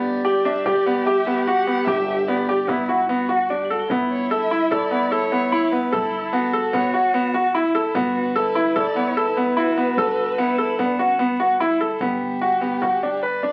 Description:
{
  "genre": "contemporary instrumental, chamber music in an uneven meter",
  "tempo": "148 BPM",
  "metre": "5/4",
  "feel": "straight",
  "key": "G lydian",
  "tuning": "A4 = 439 Hz",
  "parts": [
    { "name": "warm violin", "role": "melody", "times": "0.0-13.5 s", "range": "G4 to F#5", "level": "-30 LUFS", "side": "equal", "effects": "none" },
    { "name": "dark cello", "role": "second line", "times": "0.0-12.0 s", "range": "B3 to G4", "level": "-30 LUFS", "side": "equal", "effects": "none" },
    { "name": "bright concert grand piano", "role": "arpeggios", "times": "0.0-13.5 s", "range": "B3 to B4", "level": "-22 LUFS", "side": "equal", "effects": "none" },
    { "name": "upright bass", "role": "bass", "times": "0.0-13.5 s", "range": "G1", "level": "-39 LUFS", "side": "equal", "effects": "none" },
    { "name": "frame drum", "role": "percussion", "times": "0.2-13.5 s", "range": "none", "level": "-36 LUFS", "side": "equal", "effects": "none" },
    { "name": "crotales", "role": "texture", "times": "0.3-13.5 s", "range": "B6 to A7", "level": "-42 LUFS", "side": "equal", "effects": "none" }
  ],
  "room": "moderate studio reverb, RT60 0.7 s",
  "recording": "very old 78 rpm record, vinyl crackle",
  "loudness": "-21 LUFS",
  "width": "mono",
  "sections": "0.0-12.0 A section; 12.0-13.5 B section",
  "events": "none",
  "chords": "0.0 Gmaj7; 3.9 Asus2/G; 12.0 Gmaj7"
}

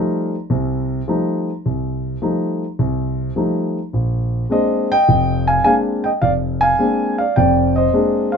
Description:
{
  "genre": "jazz",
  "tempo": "105 BPM",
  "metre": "4/4",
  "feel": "swing 69% on 8ths",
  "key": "unclear",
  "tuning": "A4 = 440 Hz",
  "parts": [
    { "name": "dark concert grand piano", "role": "solo", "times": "0.0-8.4 s", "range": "F1 to Ab5", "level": "-16 LUFS", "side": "equal", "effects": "none" }
  ],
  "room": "light reverb",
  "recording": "minimal, uncompressed stereo recording",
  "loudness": "-16 LUFS",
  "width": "side -6 dB against mid",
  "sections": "0.0-8.4 A section",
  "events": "none",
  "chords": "0.0 F9; 3.9 Bb9"
}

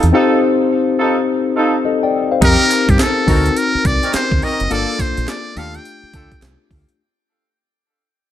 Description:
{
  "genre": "R&B, new jack swing",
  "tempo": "105 BPM",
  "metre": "4/4",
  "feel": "swing 63% on 16ths",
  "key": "unclear",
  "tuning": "A4 = 440 Hz",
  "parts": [
    { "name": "tine electric piano", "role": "accompaniment", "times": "0.0-7.0 s", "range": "A3 to G5", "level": "-17 LUFS", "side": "left 5 dB", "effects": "none" },
    { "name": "mellow horn section", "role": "stabs", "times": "0.0-6.3 s", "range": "Bb3 to Bb4", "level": "-20 LUFS", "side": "right 3 dB", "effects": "tape echo" },
    { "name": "deep dub fingered electric bass", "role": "bass", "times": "0.0-6.8 s", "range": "F#1 to G2", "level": "-17 LUFS", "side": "right 1 dB", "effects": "none" },
    { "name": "breakbeat sampler-style drum kit", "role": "drums", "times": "0.0-7.0 s", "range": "crash cymbal, handclaps, hi-hat, kick drum, snare drum, tambourine", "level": "-18 LUFS", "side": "right 1 dB", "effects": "gated reverb" },
    { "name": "trumpet with metal mute", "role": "melody", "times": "2.4-6.4 s", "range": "G4 to G5", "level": "-18 LUFS", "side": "equal", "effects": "none" },
    { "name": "group handclap", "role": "percussion", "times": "2.7-6.6 s", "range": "none", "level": "-33 LUFS", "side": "right 10 dB", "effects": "none" }
  ],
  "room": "moderate plate reverb, RT60 2.5 s",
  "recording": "none",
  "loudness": "-13 LUFS",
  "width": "side -11 dB against mid",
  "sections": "0.0-2.4 A section; 2.4-7.0 B section",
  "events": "break 0.1-2.4; fade-out 2.4-7.0",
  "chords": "0.0 F7; 2.4 F9sus4; 3.3 D7b9b13; 4.7 Gm9; 5.6 Ebmaj9#11"
}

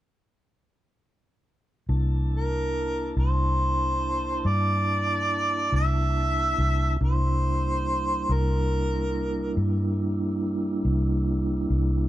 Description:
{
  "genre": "blues",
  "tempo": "47 BPM (dotted quarters)",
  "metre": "12/8",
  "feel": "straight",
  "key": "C mixolydian",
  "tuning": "A4 = 441 Hz",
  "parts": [
    { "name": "mellow tonewheel organ", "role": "sustained chords", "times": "1.9-12.1 s", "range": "G3 to A5", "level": "-30 LUFS", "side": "right 2 dB", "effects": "slow rotary speaker" },
    { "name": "vintage muted fingered electric bass", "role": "bass", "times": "1.9-12.1 s", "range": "C2 to G2", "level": "-25 LUFS", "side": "equal", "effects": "none" },
    { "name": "mellow harmonica", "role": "melody", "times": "2.3-9.6 s", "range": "Bb4 to E5", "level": "-27 LUFS", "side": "right 1 dB", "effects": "none" }
  ],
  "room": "little or no reverb",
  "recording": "dry, close 1970s-style studio recording",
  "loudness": "-23 LUFS",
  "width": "side -14 dB against mid",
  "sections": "1.9-12.1 A section",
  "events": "none",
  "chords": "1.9 C13"
}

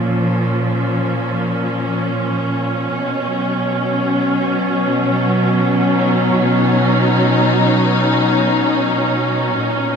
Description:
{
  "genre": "ambient",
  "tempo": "free time",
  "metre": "none",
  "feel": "none",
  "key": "unclear",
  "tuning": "A4 = 440 Hz",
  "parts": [
    { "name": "rich studio string section", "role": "solo", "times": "0.0-10.0 s", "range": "Bb2 to D#4", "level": "-14 LUFS", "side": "equal", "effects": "diffuse ambient delay" }
  ],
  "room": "wet huge ambient reverb, RT60 8.4 s",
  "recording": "cassette tape",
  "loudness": "-14 LUFS",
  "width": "side -6 dB against mid",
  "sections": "0.0-9.6 A section",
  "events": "none",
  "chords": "0.0 Bbm; 2.9 B"
}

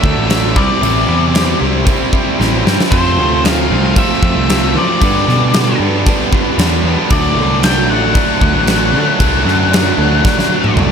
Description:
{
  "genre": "quiet-loud alternative rock",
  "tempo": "114 BPM",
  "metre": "4/4",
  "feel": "straight",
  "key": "unclear",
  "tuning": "A4 = 442 Hz",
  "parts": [
    { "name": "octave-fuzz lead guitar", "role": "melody", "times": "0.0-10.7 s", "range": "C5 to G5", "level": "-18 LUFS", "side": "left 5 dB", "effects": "distortion" },
    { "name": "fuzz guitar", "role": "riff", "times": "0.0-10.9 s", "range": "F2 to E4", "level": "-19 LUFS", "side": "right 15 dB", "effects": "distortion" },
    { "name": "overdriven electric guitar", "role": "riff", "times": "0.0-10.9 s", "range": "F2 to E4", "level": "-20 LUFS", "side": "left 13 dB", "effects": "none" },
    { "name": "tight distorted guitar", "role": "riff", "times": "0.0-10.9 s", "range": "F2 to E4", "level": "-21 LUFS", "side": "right 1 dB", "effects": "distortion" },
    { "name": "fuzz picked electric bass", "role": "bass", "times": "0.0-10.9 s", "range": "A1 to F3", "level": "-16 LUFS", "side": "equal", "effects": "overdrive" },
    { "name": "huge arena drum kit", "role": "drums", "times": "0.0-10.9 s", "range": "crash cymbal, kick drum, snare drum, toms", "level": "-15 LUFS", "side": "equal", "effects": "none" }
  ],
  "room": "little or no reverb",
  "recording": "none",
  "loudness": "-10 LUFS",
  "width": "side -7 dB against mid",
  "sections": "0.0-10.9 A section",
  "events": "drum fill 2.4-2.9, 10.3-10.9",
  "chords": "0.0 D; 0.6 C; 2.9 F; 5.0 G; 7.1 D"
}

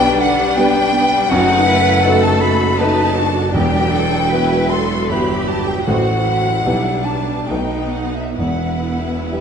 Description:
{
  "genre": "classical",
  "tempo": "64-83 BPM",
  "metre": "3/4",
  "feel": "rubato",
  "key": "E minor",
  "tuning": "A4 = 440 Hz",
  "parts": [
    { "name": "warm concert grand piano", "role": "melody", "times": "0.0-9.4 s", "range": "E1 to C5", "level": "-19 LUFS", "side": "left 1 dB", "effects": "none" },
    { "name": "warm symphonic violin section", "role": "melody", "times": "0.0-9.4 s", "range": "A4 to C5", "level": "-29 LUFS", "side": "left 5 dB", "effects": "none" },
    { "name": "mellow hollow silver concert flute", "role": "second line", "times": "0.0-9.4 s", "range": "E5 to C6", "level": "-20 LUFS", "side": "left 2 dB", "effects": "none" },
    { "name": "rich studio violin section", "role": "second line", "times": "0.0-9.4 s", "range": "E5 to C6", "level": "-23 LUFS", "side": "left 3 dB", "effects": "none" },
    { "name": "warm symphonic viola section", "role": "accompaniment", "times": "0.0-9.4 s", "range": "D3 to A4", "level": "-22 LUFS", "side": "right 2 dB", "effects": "none" },
    { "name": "rich symphonic cello section", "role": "bass", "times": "0.0-9.4 s", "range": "D4 to B4", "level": "-24 LUFS", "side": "right 4 dB", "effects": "none" },
    { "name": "mellow tuba", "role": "bass", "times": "1.3-9.4 s", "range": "E1 to B1", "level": "-26 LUFS", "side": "right 5 dB", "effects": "none" },
    { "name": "rich chamber double bass section", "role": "bass", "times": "1.3-9.4 s", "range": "E1 to E2", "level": "-28 LUFS", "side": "right 3 dB", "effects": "none" },
    { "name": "timpani", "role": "percussion", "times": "3.5-4.7, 8.4-9.4 s", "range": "E2", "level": "-27 LUFS", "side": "right 1 dB", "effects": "none" }
  ],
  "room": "moderate scoring stage reverb, RT60 1.6 s",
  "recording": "nothing above 10.6 kHz",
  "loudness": "-14 LUFS",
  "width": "side -7 dB against mid",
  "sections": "0.0-9.4 A section",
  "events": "none",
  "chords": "0.0 G/B; 1.3 B7/F#; 3.5 Em; 5.9 F#dim/A; 6.6 Em/B; 7.5 B7; 8.4 E5"
}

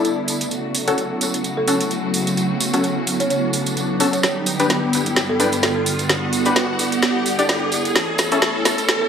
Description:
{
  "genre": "bass house",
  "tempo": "129 BPM",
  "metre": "4/4",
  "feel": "swing 56% on 16ths",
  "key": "unclear",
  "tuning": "A4 = 440 Hz",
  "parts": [
    { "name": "clear symphonic string section", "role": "sustained chords", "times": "0.0-9.1 s", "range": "C#3 to F#5", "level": "-26 LUFS", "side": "left 1 dB", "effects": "low-pass filter" },
    { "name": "orchestra-hit-like synth stab", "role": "stabs", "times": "0.0-8.4 s", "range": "C#4 to D5", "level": "-22 LUFS", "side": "left 3 dB", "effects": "built-in reverb, cassette tape, digital delay" },
    { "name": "garage drum kit", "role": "drums", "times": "0.0-9.0 s", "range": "hi-hat, snare drum", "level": "-21 LUFS", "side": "equal", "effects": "overdrive" },
    { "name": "tambourine", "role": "percussion", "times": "0.0-9.0 s", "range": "none", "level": "-29 LUFS", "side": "right 4 dB", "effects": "none" },
    { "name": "riser", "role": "sound effects", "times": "0.5-9.1 s", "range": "none", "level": "-28 LUFS", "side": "equal", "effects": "none" },
    { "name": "ethereal airy pad", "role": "texture", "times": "0.0-9.1 s", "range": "G2 to D5", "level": "-24 LUFS", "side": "right 2 dB", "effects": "ensemble chorus, built-in reverb, phaser" },
    { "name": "folk marimba with medium mallets", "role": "melody", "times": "1.6-5.8, 9.0-9.1 s", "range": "A4 to C#5", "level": "-25 LUFS", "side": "right 2 dB", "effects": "digital delay" }
  ],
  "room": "moderate plate reverb, RT60 1.4 s, digital ambience",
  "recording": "high-pass filter",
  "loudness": "-17 LUFS",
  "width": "side -7 dB against mid",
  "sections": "0.0-9.1 A section",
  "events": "build-up 0.0-9.1; filter sweep on string section 0.0-9.1; riser 0.5-9.1; drum fill 4.2-9.1",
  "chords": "0.0 Em7; 0.5 F#m; 4.2 G; 8.0 A"
}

